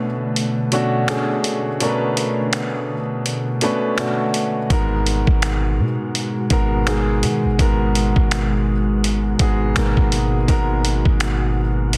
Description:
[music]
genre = contemporary R&B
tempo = 83 BPM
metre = 4/4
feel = swing 58% on 16ths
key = G# minor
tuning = A4 = 440 Hz
[part]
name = clear grand piano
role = accompaniment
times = 0.0-12.0 s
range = G#2 to A5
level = -24 LUFS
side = equal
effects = none
[part]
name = glassy FM pad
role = sustained chords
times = 0.0-12.0 s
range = B2 to F#4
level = -27 LUFS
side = equal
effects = ensemble chorus, built-in reverb
[part]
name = dusty soul sampler-style drum kit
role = drums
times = 0.4-12.0 s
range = finger snaps, hi-hat, kick drum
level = -24 LUFS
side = equal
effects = soft clipping on snare
[part]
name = warm 808-style bass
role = bass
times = 4.7-12.0 s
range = G#1 to D#3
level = -23 LUFS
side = equal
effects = none
[sound]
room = light reverb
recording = dense, heavily limited modern master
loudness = -19 LUFS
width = mono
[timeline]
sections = 0.0-12.0 A section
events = break 0.0-4.7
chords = 0.0 Bm7; 4.7 G#m7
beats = 0.36 1.09 | 1.81 2.53 3.25 3.98 | 4.70 5.42 6.15 6.87 | 7.59 8.31 9.04 9.76 | 10.48 11.21 11.93

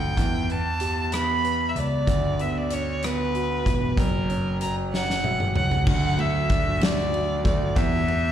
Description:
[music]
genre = six-eight pop ballad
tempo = 63 BPM (dotted quarters)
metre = 6/8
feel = straight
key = unclear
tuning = A4 = 440 Hz
[part]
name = warm violin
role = melody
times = 0.0-8.3 s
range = A#4 to B5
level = -26 LUFS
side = equal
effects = plate reverb, slapback echo, tape echo
[part]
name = clear concert grand piano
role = accompaniment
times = 0.0-8.3 s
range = D3 to F#5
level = -30 LUFS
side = right 2 dB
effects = plate reverb, slapback echo
[part]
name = warm concert grand piano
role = bass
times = 0.0-8.3 s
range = E1 to E2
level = -27 LUFS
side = equal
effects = none
[part]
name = huge arena drum kit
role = drums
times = 0.2-8.2 s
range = crash cymbal, hi-hat, kick drum, ride cymbal, rim click, snare drum, toms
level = -26 LUFS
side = left 1 dB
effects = none
[part]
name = fingerpicked plugged-in steel-string acoustic guitar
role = arpeggios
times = 5.9-8.3 s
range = E3 to G4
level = -37 LUFS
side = left 3 dB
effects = plate reverb, slapback echo, tape echo
[sound]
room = light reverb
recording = live gig heard through the venue's PA, recital hall reverb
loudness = -21 LUFS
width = side -10 dB against mid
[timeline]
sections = 0.0-5.9 A section; 5.9-8.3 B section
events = drum fill 4.9-5.9; grand piano fill 4.9-5.9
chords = 0.2 Em; 2.1 Bm/D; 4.0 F#; 5.9 D; 7.8 Em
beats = | 0.17 1.12 | 2.07 3.02 | 3.97 4.92 | 5.87 6.82 | 7.77

